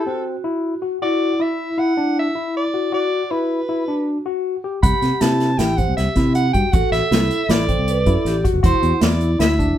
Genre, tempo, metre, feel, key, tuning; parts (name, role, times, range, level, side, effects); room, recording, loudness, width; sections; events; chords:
progressive instrumental, band music in an uneven meter; 158 BPM; 5/4; straight; A dorian; A4 = 440 Hz
bright soprano saxophone; melody; 0.0-9.8 s; A4 to B5; -23 LUFS; right 2 dB
vibraphone with medium mallets; second line; 0.0-9.8 s; E4 to B4; -25 LUFS; right 1 dB
overdriven tine electric piano; arpeggios; 0.1-9.8 s; C4 to F#5; -23 LUFS; left 4 dB
fretless electric bass; bass; 4.8-9.8 s; E1 to C3; -20 LUFS; right 1 dB
unplugged drum kit; drums; 4.8-9.7 s; hi-hat, kick drum, snare drum; -19 LUFS; equal
moderate studio reverb, RT60 0.6 s; band playing live in one room; -16 LUFS; side -11 dB against mid
0.0-9.8 A section
0.0 C; 1.0 Dadd9; 2.9 Gmaj7 (rootless); 4.8 C6; 6.7 Am; 8.6 E5